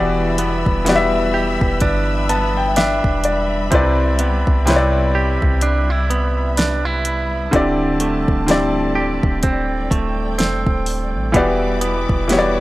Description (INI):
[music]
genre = contemporary R&B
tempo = 63 BPM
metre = 4/4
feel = swing 58% on 16ths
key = E minor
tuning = A4 = 442 Hz
[part]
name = clear grand piano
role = accompaniment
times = 0.0-12.6 s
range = C3 to A5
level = -19 LUFS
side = left 1 dB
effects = none
[part]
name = warm studio string section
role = sustained chords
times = 0.0-12.6 s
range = G3 to E6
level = -28 LUFS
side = left 2 dB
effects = none
[part]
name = direct-recorded clean electric guitar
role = arpeggios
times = 0.0-12.6 s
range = C3 to G4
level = -22 LUFS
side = right 3 dB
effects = spring reverb
[part]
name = warm 808-style bass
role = bass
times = 0.0-12.6 s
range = D1 to C2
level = -21 LUFS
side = equal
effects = none
[part]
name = smooth R&B drum kit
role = drums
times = 0.4-12.6 s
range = hi-hat, kick drum, snare drum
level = -20 LUFS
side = equal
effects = none
[sound]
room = digital ambience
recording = dry, gritty hardware recording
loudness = -15 LUFS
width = side -17 dB against mid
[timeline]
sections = 0.0-12.6 A section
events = grand piano fill 1.8-3.7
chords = 0.0 Em7; 3.7 Cmaj7; 7.5 D7sus4; 11.3 Em7